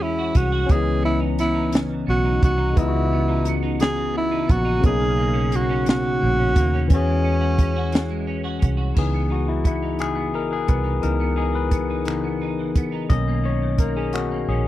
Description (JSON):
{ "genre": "slow six-eight R&B", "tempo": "58 BPM (dotted quarters)", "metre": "6/8", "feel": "straight", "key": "C# dorian", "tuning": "A4 = 437 Hz", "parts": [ { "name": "breathy tenor saxophone", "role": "melody", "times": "0.0-8.3 s", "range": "C#4 to G#4", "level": "-23 LUFS", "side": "right 1 dB", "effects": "slapback echo" }, { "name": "semi-hollow electric guitar", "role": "second line", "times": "0.0-14.7 s", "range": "B2 to F#4", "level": "-29 LUFS", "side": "right 6 dB", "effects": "ensemble chorus" }, { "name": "barky tine electric piano", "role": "accompaniment", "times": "0.0-14.7 s", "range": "C#3 to D#5", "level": "-25 LUFS", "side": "left 6 dB", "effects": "none" }, { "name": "vintage muted fingered electric bass", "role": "bass", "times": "0.0-14.7 s", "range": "A#1 to E2", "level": "-24 LUFS", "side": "right 1 dB", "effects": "none" }, { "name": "compact cocktail drum kit", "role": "drums", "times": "0.3-14.3 s", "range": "crash cymbal, finger snaps, hi-hat, kick drum, snare drum", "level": "-18 LUFS", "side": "right 1 dB", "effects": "none" } ], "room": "little or no reverb", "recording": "dry, close 1970s-style studio recording", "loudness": "-19 LUFS", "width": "side -14 dB against mid", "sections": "0.0-9.0 A section; 9.0-14.7 B section", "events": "tine electric piano solo 9.0-14.7", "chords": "0.0 E69; 0.7 C#m9; 4.8 Bmaj9; 6.9 E69; 9.0 C#m9; 13.1 Bmaj9", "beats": "| 0.70 1.73 | 2.77 3.80 | 4.83 5.87 | 6.90 7.94 | 8.97 10.01 | 11.04 12.08 | 13.11 14.14" }